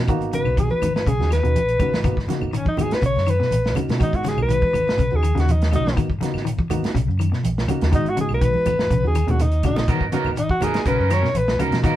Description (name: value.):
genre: afrobeat.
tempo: 122 BPM.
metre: 4/4.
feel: straight.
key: G# minor.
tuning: A4 = 441 Hz.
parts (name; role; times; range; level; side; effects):
reed electric piano; accompaniment; 0.0-12.0 s; G#3 to G#4; -28 LUFS; right 3 dB; none.
fingered electric bass; bass; 0.0-12.0 s; G#1 to B2; -22 LUFS; equal; none.
electric guitar at the edge of break-up; arpeggios; 0.1-12.0 s; B2 to D#3; -27 LUFS; left 6 dB; tremolo, slapback echo.
warm soul drum kit; drums; 0.1-12.0 s; hi-hat, kick drum, snare drum; -25 LUFS; equal; none.
claves; percussion; 0.1-12.0 s; none; -40 LUFS; left 4 dB; none.
congas; percussion; 0.1-12.0 s; none; -28 LUFS; right 2 dB; none.
shekere; percussion; 0.1-12.0 s; none; -30 LUFS; right 1 dB; none.
warm alto saxophone; melody; 0.3-11.6 s; C#4 to C#5; -22 LUFS; left 1 dB; none.
electric guitar at the edge of break-up; stabs; 9.9-12.0 s; F#3 to A#4; -25 LUFS; right 5 dB; warbly pitch drift.
room: light reverb.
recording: band playing live in one room.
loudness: -18 LUFS.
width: side -13 dB against mid.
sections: 0.0-12.0 A section.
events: alto saxophone solo 0.0-12.0; drum fill 8.9-9.9.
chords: 0.1 G#m9; 3.0 Bmaj9; 4.0 G#m7; 5.0 Bmaj9; 6.0 G#m9; 7.0 Bmaj9; 7.9 G#m7; 8.9 Bmaj9; 9.9 G#m9; 10.9 Bmaj9.